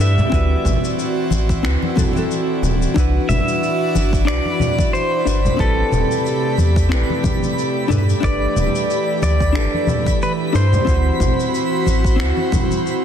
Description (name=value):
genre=sunset chillout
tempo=91 BPM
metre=4/4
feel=swing 55% on 16ths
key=unclear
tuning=A4 = 440 Hz
part: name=pedal steel guitar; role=melody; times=0.0-13.0 s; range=A4 to E5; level=-23 LUFS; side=equal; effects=ping-pong delay
part: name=vintage hollow-body jazz guitar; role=accompaniment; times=0.0-13.0 s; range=C4 to C5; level=-24 LUFS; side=moving between left 4 dB and right 2 dB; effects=auto-pan, ping-pong delay
part: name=airy breathy pad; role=sustained chords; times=0.0-13.0 s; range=C3 to D5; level=-23 LUFS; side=right 1 dB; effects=chorus
part: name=warm sub bass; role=bass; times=0.0-12.3 s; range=D1 to G2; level=-18 LUFS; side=equal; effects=none
part: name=electronic shaker, congas and finger snaps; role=drums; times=0.0-13.0 s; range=none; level=-25 LUFS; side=equal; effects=soft clipping on snare
part: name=electronic kick drum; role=drums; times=0.3-12.7 s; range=none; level=-21 LUFS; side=equal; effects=overdrive
part: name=congas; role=percussion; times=0.7-12.8 s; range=none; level=-26 LUFS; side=left 4 dB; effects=none
part: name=twinkling granular texture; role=texture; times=3.4-13.0 s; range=B5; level=-31 LUFS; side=right 3 dB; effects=built-in reverb
room=light reverb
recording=dense, heavily limited modern master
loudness=-15 LUFS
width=side -8 dB against mid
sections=0.0-13.0 A section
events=none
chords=0.3 D13; 3.0 Cmaj9#11; 5.6 Am9; 7.9 G69; 10.9 D13